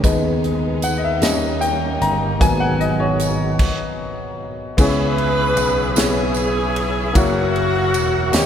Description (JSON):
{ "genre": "slow gospel", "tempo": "51 BPM (dotted quarters)", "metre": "6/8", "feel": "straight", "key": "G# minor", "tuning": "A4 = 444 Hz", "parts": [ { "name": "warm upright piano", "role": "accompaniment", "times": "0.0-8.5 s", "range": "C#3 to A#5", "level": "-21 LUFS", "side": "left 3 dB", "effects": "none" }, { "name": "tonewheel organ", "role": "sustained chords", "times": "0.0-8.5 s", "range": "B2 to C#6", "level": "-28 LUFS", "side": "right 2 dB", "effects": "slow rotary speaker, chorus vibrato" }, { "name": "warm symphonic string section", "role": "sustained chords", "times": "0.0-3.6 s", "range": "B2 to D#4", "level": "-33 LUFS", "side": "right 1 dB", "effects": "none" }, { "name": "slap bass with an envelope filter", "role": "bass", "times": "0.0-8.5 s", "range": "E1 to D#2", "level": "-23 LUFS", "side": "right 2 dB", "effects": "none" }, { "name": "tight funk drum kit", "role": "drums", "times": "0.0-8.5 s", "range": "crash cymbal, hi-hat, kick drum, ride cymbal, snare drum", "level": "-22 LUFS", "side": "equal", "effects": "none" }, { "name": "tambourine", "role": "percussion", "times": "0.0-8.5 s", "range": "none", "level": "-32 LUFS", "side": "right 7 dB", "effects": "none" }, { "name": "warm saxophone section", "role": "melody", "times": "4.8-8.5 s", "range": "A#3 to B4", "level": "-20 LUFS", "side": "left 1 dB", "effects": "none" } ], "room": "wet cathedral reverb, RT60 4.2 s", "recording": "recorded in a church or concert hall", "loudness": "-16 LUFS", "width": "side -9 dB against mid", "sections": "0.0-4.8 A section; 4.8-8.5 B section", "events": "upright piano solo 0.0-4.8; stop 3.6-4.8", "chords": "0.0 G#m/D#; 1.2 D#7; 2.4 G#m7; 4.8 C#m7; 7.2 F#7" }